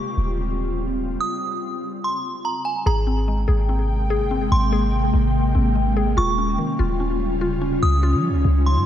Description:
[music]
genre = hip hop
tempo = 145 BPM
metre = 4/4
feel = half-time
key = Ab major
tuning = A4 = 440 Hz
[part]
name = delicate synth tine bell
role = melody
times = 0.0-8.9 s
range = Ab5 to Eb6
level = -27 LUFS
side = right 2 dB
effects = chorus, low-pass filter, analog delay
[part]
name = ethereal airy pad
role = sustained chords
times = 0.0-8.9 s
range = C3 to G5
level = -25 LUFS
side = left 1 dB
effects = ensemble chorus, built-in reverb
[part]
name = clean 808-style bass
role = bass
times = 0.2-8.9 s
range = Eb1 to F3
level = -20 LUFS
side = equal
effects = none
[part]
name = mallet-like synth pluck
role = arpeggios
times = 2.9-8.9 s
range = Db3 to Ab4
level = -27 LUFS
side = left 5 dB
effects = chorus, low-pass filter, analog delay
[sound]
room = moderate lush hall reverb, RT60 2.7 s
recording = dreamy mix soaked in reverb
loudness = -19 LUFS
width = side -10 dB against mid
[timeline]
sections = 0.0-2.9 A section; 2.9-8.9 B section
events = none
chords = 0.0 Eb13; 1.2 N.C.; 2.9 Abmaj9; 6.2 Eb9; 7.8 Dbadd9

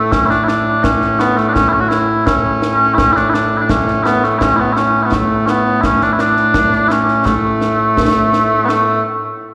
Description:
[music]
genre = scottish traditional, Scottish pipe music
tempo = 84 BPM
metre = 2/4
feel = straight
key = A major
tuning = A4 = 440 Hz
[part]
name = mellow small bagpipes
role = melody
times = 0.0-9.0 s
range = A2 to F#4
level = -14 LUFS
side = equal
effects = slapback echo
[part]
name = concert snare drum and concert bass drum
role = drums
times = 0.1-9.0 s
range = none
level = -23 LUFS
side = equal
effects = none
[sound]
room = moderate lush hall reverb, RT60 2.6 s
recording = live gig heard through the venue's PA, recital hall reverb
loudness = -14 LUFS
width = mono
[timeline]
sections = 0.0-8.7 A section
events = none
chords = none

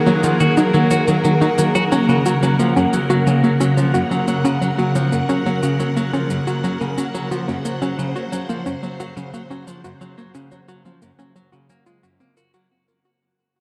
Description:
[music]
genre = ambient, sequencer-driven space music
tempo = 89 BPM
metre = 4/4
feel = straight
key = Gb lydian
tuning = A4 = 440 Hz
[part]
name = phased string machine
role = sustained chords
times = 0.0-12.7 s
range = Db3 to Gb5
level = -22 LUFS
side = equal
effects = ensemble chorus, phaser
[part]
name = hollow square pluck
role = riff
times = 0.0-12.6 s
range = Eb3 to Bb4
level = -24 LUFS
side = equal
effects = chorus, cassette tape, delay
[part]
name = bubbling stepped-filter texture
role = texture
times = 0.0-12.7 s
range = Gb5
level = -31 LUFS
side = equal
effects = chorus, built-in reverb
[part]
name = clean electric guitar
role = arpeggios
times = 0.1-12.7 s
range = Gb2 to Gb4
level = -25 LUFS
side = equal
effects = delay
[part]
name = congas and cabasa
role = percussion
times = 0.1-12.7 s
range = none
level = -30 LUFS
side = equal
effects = delay
[sound]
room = wet cathedral reverb, RT60 6.1 s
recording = in a vast, echoing space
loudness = -18 LUFS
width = mono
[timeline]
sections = 0.0-12.7 A section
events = filter sweep on synth arpeggio sound 0.0-12.7; fade-out 1.9-12.7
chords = 0.0 Ebm; 1.9 Gb

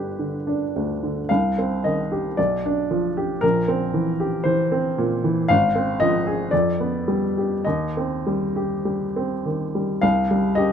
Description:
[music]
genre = classical, romantic character piece for solo piano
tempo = 50-59 BPM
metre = 2/4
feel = rubato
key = C minor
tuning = A4 = 440 Hz
[part]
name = warm upright piano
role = solo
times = 0.0-10.7 s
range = G1 to F5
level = -20 LUFS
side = equal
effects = none
[sound]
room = light reverb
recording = dark, warm production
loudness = -20 LUFS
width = side -8 dB against mid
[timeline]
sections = 0.0-10.0 A section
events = none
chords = 0.0 G; 1.3 Cm; 2.4 G7/B; 3.4 C7/Bb; 5.5 Fm/Ab; 6.5 G7/F; 7.6 Cm/Eb; 10.0 Cm

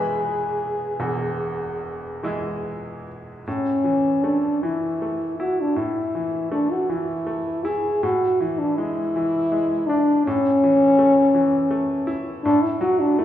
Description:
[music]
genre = classical, romantic duo for French horn and grand piano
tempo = 48-56 BPM (dotted quarters)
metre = 12/8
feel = rubato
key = A major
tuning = A4 = 439 Hz
[part]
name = dark French horn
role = melody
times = 0.0-13.2 s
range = C#4 to G#4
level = -20 LUFS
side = left 1 dB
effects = none
[part]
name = bright grand piano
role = accompaniment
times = 0.0-13.2 s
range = E1 to C#6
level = -29 LUFS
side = right 1 dB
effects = none
[sound]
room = wet recital hall reverb, RT60 1.4 s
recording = heard from further back in the room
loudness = -19 LUFS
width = side -11 dB against mid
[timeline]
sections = 0.0-3.5 A section; 3.5-13.2 B section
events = none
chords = 0.0 E; 3.5 A5; 8.0 E7/A; 10.3 A; 12.4 D/A

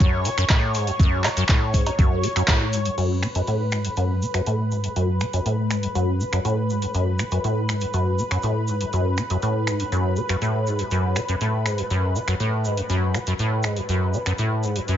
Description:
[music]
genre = acid house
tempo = 121 BPM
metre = 4/4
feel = straight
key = F# minor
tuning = A4 = 440 Hz
[part]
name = lush unison pad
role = sustained chords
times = 0.0-15.0 s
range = B4 to C#5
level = -30 LUFS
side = left 1 dB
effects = chorus, sidechain pumping
[part]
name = liquid acid bass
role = riff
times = 0.0-15.0 s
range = F#2 to B2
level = -22 LUFS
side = equal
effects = analog chorus, ping-pong delay
[part]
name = electro analog drum machine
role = drums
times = 0.0-15.0 s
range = cowbell, crash cymbal, finger snaps, handclaps, hi-hat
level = -27 LUFS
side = right 1 dB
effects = none
[part]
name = electronic kick drum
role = drums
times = 0.0-2.6 s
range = none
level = -18 LUFS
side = equal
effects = none
[part]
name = egg shaker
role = percussion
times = 0.0-15.0 s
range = none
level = -39 LUFS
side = right 2 dB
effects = none
[sound]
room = moderate studio reverb, RT60 0.6 s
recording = nothing above 7.5 kHz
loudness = -20 LUFS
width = side -10 dB against mid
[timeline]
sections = 0.0-3.0 A section; 3.0-15.0 B section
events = drop 0.0-3.0; band accent 2.5; filter sweep on acid bass 3.0-15.0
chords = 0.0 F#5; 3.0 F#madd11

